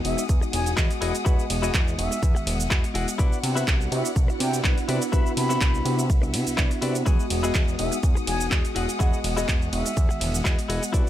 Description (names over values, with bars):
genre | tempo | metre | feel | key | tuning
filtered disco house | 124 BPM | 4/4 | swing 54% on 16ths | E major | A4 = 440 Hz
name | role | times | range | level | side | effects
mellow silver concert flute | melody | 0.0-10.4 s | E5 to B5 | -34 LUFS | right 1 dB | sidechain pumping, dub echo
mellow tine electric piano | accompaniment | 0.0-11.1 s | D#3 to D#5 | -30 LUFS | equal | phaser, sidechain pumping
dark studio string section | sustained chords | 0.0-11.1 s | E4 to D#6 | -34 LUFS | left 4 dB | vintage 12-bit sampler grit, sidechain pumping
direct-recorded clean electric guitar | riff | 0.0-11.1 s | E4 to F#5 | -32 LUFS | left 5 dB | vintage 12-bit sampler grit, sidechain pumping
punchy analog drum machine | drums | 0.0-11.1 s | handclaps, hi-hat, ride cymbal, shaker | -29 LUFS | right 2 dB | sidechain pumping on hats, sidechain pumping on cymbals, sidechain pumping on perc
fat analog bass | bass | 0.1-11.0 s | E1 to C3 | -28 LUFS | equal | sidechain pumping
electronic kick drum | drums | 0.3-11.0 s | none | -22 LUFS | equal | none
room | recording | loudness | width
digital ambience | none | -21 LUFS | side -12 dB against mid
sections
0.0-11.1 A section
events
none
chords
0.0 Emaj9; 3.2 Cmaj9#11; 7.1 Emaj9